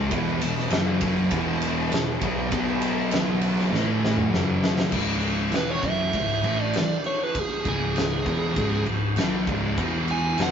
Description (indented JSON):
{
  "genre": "stoner and doom metal",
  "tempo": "99 BPM",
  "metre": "4/4",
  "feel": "straight",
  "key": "C# minor",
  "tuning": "A4 = 439 Hz",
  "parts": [
    { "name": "fuzz guitar", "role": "riff", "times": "0.0-4.9 s", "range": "E2 to C#4", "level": "-33 LUFS", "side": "equal", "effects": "none" },
    { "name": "thick fuzz guitar", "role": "riff", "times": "0.0-10.5 s", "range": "C#2 to C#4", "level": "-28 LUFS", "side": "left 5 dB", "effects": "distortion" },
    { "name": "thick fuzz guitar", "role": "riff", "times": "0.0-10.5 s", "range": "C#2 to C#4", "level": "-27 LUFS", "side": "right 4 dB", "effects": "distortion" },
    { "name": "picked electric bass", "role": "bass", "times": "0.0-10.5 s", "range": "C#1 to B1", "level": "-33 LUFS", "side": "equal", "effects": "overdrive" },
    { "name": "oversized low-tuned drum kit", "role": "drums", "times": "0.1-10.5 s", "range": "crash cymbal, kick drum, ride cymbal, snare drum, toms", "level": "-26 LUFS", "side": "left 1 dB", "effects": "none" },
    { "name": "fuzz lead guitar", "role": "melody", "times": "5.6-10.5 s", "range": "G#4 to G#5", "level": "-27 LUFS", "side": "right 3 dB", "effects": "distortion" }
  ],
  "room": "light reverb",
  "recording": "rough rehearsal-room recording, nothing above 7.6 kHz",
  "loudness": "-22 LUFS",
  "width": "side -8 dB against mid",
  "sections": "0.0-4.9 A section; 4.9-10.5 B section",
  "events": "drum fill 3.7-4.9; lead electric guitar solo 4.9-10.5",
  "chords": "0.1 E5; 2.5 B5; 3.7 A5; 4.3 F#5; 4.9 C#m; 9.8 E5",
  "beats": "| 0.11 0.71 1.31 1.92 | 2.52 3.12 3.72 4.32 | 4.93 5.53 6.13 6.74 | 7.34 7.95 8.55 9.16 | 9.77 10.37"
}